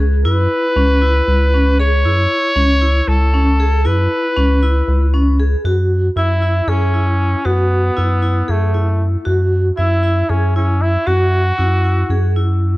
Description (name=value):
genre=progressive instrumental, band music in an uneven meter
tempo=233 BPM (eighths)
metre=7/8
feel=straight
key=F# minor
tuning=A4 = 442 Hz
part: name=vibraphone with hard mallets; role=arpeggios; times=0.0-12.8 s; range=C#4 to G#4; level=-20 LUFS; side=left 1 dB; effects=none
part: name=rubbery square bass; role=bass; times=0.0-12.8 s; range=C#2 to F#2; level=-14 LUFS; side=equal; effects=none
part: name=clear trumpet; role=melody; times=0.2-12.4 s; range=A3 to C#5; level=-19 LUFS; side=equal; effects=analog delay
room=light reverb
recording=cassette tape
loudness=-13 LUFS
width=side -19 dB against mid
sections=0.0-5.7 A section; 5.7-12.8 B section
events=none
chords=0.0 F#9sus4; 5.7 F#7(no3)